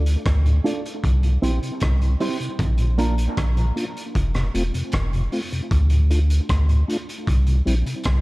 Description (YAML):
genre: dub reggae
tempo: 77 BPM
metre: 4/4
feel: straight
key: D minor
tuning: A4 = 439 Hz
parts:
  - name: clean electric guitar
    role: accompaniment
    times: 0.0-3.1 s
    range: Bb3 to D5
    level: -28 LUFS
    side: right 3 dB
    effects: low-pass filter, dub echo
  - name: soft dub sub bass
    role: bass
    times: 0.0-8.2 s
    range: E1 to D2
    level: -18 LUFS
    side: equal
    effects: none
  - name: crunchy breakbeat drum kit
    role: drums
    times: 0.1-8.2 s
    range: hi-hat, kick drum, rim click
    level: -27 LUFS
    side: equal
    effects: none
  - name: mellow tonewheel organ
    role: accompaniment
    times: 0.4-7.9 s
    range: D2 to F4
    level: -28 LUFS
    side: equal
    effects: chorus vibrato, stopped rotary speaker, low-pass filter, dub echo
room: small room ambience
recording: echo-heavy mix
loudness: -19 LUFS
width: side -21 dB against mid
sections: 0.0-8.2 A section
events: none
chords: 0.0 Dm; 1.0 C; 2.6 Bb; 4.1 F5; 5.7 D5; 7.3 N.C.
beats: 0.25 1.03 1.81 | 2.59 3.37 4.15 4.93 | 5.71 6.49 7.27 8.05